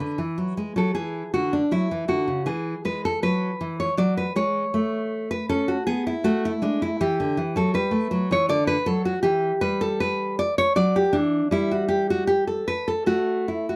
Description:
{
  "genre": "classical, baroque-style dance for nylon-string guitar",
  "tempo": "79 BPM",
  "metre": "3/4",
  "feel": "rubato",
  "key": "A major, D major from 7.0 s",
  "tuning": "A4 = 440 Hz",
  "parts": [
    { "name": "nylon-string guitar", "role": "solo", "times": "0.0-13.8 s", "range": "C#3 to D5", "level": "-24 LUFS", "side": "equal", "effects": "none" }
  ],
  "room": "moderate booth ambience, RT60 0.2 s",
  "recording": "none",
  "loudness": "-24 LUFS",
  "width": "mono",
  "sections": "0.0-13.8 A section",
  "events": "none",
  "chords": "0.2 E7; 2.5 E69; 4.7 A; 7.0 A5; 8.5 D; 9.2 Emadd11; 10.8 D/F#; 11.5 N.C.",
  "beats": "| 0.18 0.95 1.71 | 2.47 3.23 3.99 | 4.75 5.49 6.24 | 6.99 7.74 8.49 | 9.24 10.01 10.78 | 11.54 12.30 13.07"
}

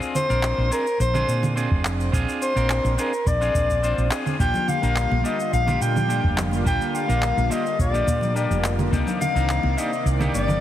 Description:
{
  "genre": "sunset chillout",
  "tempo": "106 BPM",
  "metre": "4/4",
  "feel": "straight",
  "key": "unclear",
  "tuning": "A4 = 445 Hz",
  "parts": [
    { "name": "clean electric guitar", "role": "accompaniment", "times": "0.0-10.6 s", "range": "Bb3 to C5", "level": "-28 LUFS", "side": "moving between left 5 dB and right 4 dB", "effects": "auto-pan, ping-pong delay" },
    { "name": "electronic shaker, congas and handclaps", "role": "drums", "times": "0.0-10.6 s", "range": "none", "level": "-30 LUFS", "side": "right 2 dB", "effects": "none" },
    { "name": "dark soprano saxophone", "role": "melody", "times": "0.2-10.6 s", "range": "Bb4 to G5", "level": "-25 LUFS", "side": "left 2 dB", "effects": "ping-pong delay" },
    { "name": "woody fretless electric bass", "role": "bass", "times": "0.3-10.6 s", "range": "F1 to Bb2", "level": "-23 LUFS", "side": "equal", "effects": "none" },
    { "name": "electronic kick drum", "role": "drums", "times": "1.7-9.0 s", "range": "none", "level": "-25 LUFS", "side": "equal", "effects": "none" },
    { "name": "lush unison pad", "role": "sustained chords", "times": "4.4-10.6 s", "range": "C3 to D5", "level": "-30 LUFS", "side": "right 1 dB", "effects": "chorus" },
    { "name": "congas", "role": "percussion", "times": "4.5-10.6 s", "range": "none", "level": "-32 LUFS", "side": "left 3 dB", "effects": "none" }
  ],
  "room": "light reverb, digital ambience",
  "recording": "heavily compressed radio sound",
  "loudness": "-20 LUFS",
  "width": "side -12 dB against mid",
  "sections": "0.0-10.6 A section",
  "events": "none",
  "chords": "0.0 Bb9; 4.4 Gm7; 8.9 Cm9",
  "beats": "0.43 1.00 1.57 | 2.13 2.70 3.26 3.83 | 4.40 4.96 5.53 6.09 | 6.66 7.23 7.79 8.36 | 8.93 9.49 10.06"
}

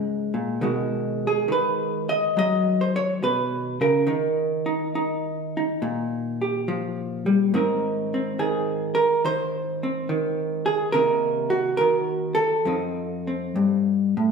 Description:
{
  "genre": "solo jazz",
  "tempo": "70 BPM",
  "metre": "4/4",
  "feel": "swing 68% on 8ths, rubato",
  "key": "Ab major",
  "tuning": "A4 = 443 Hz",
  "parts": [
    { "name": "vintage hollow-body jazz guitar", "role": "solo", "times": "0.0-14.3 s", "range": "F2 to D#5", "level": "-21 LUFS", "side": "equal", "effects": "none" }
  ],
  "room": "wet stone room reverb, RT60 1.4 s",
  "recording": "band playing live in one room",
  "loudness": "-21 LUFS",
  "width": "side -5 dB against mid",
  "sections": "0.0-14.3 A section",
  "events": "none",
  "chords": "0.0 Gbadd9; 0.6 B6; 4.1 Ebadd9; 7.5 Abadd9; 10.9 Cm7b5; 12.6 F7",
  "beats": "| 0.64 1.51 2.38 3.23 | 4.09 4.95 5.83 6.69 | 7.54 8.38 9.23 10.08 | 10.92 11.77 12.64 13.55"
}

